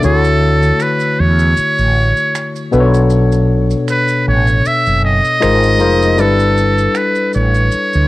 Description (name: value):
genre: R&B, neo-soul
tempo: 78 BPM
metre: 4/4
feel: swing 54% on 16ths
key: B minor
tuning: A4 = 442 Hz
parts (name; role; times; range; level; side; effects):
- trumpet with metal mute; melody; 0.0-8.1 s; A4 to E5; -16 LUFS; right 1 dB; cassette tape
- barky tine electric piano; accompaniment; 0.0-8.1 s; B2 to C#5; -15 LUFS; left 3 dB; overdrive
- mellow fretless electric bass; bass; 0.0-8.1 s; E#1 to E2; -13 LUFS; right 1 dB; transformer saturation
- maracas and finger snaps; percussion; 0.0-8.1 s; none; -29 LUFS; right 8 dB; none
room: moderate spring reverb, RT60 1.2 s, small room ambience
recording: home recording on cassette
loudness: -10 LUFS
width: side -17 dB against mid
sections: 0.0-8.1 A section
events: none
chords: 0.0 Dmaj9; 2.7 Bm9; 5.4 G#69; 6.2 G69